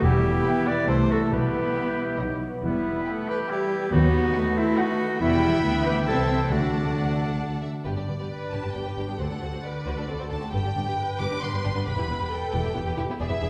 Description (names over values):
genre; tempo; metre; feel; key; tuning
classical, dramatic, fast romantic movement for symphony orchestra; 136 BPM; 3/4; straight; E minor, G major from 5.2 s; A4 = 439 Hz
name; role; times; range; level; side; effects
clear clarinet; second line; 0.0-7.6 s; E4 to D5; -30 LUFS; equal; none
clear oboe; second line; 0.0-7.6 s; B3 to B4; -36 LUFS; equal; none
mellow silver concert flute; second line; 0.0-7.6 s; E5 to D6; -37 LUFS; equal; none
warm symphonic viola section; accompaniment; 0.0-13.5 s; G3 to B4; -33 LUFS; equal; none
concert harp; arpeggios; 0.0-13.5 s; E2 to E5; -35 LUFS; equal; none
warm symphonic cello section; bass; 0.0-13.5 s; C2 to C3; -34 LUFS; equal; none
warm symphonic double bass section; bass; 0.0-13.5 s; E1 to D#2; -32 LUFS; equal; none
dark French horn section; sustained chords; 0.1-6.7 s; F#3 to E4; -34 LUFS; equal; none
warm symphonic violin section; melody; 0.4-13.5 s; D5 to D6; -37 LUFS; equal; none
warm symphonic violin section; second line; 0.5-13.5 s; B3 to A5; -37 LUFS; equal; none
timpani; percussion; 6.5-7.1 s; D3; -35 LUFS; equal; none
room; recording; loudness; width
wet scoring stage reverb, RT60 2.1 s; heard from further back in the room; -25 LUFS; mono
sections
0.0-7.9 A section; 7.9-13.5 B section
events
none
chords
0.0 Em; 0.9 Am/C; 1.3 Em/B; 2.2 B; 2.6 Em; 3.9 B/D#; 5.2 Em; 6.1 Am7/C; 6.5 D; 7.9 G; 9.2 D7; 10.5 G; 11.9 Em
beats
| 0.03 0.46 0.89 | 1.32 1.76 2.20 | 2.64 3.07 3.50 | 3.93 4.35 4.78 | 5.20 5.63 6.06 | 6.51 6.96 7.41 | 7.86 8.31 8.76 | 9.20 9.65 10.09 | 10.54 10.98 11.42 | 11.87 12.31 12.75 | 13.19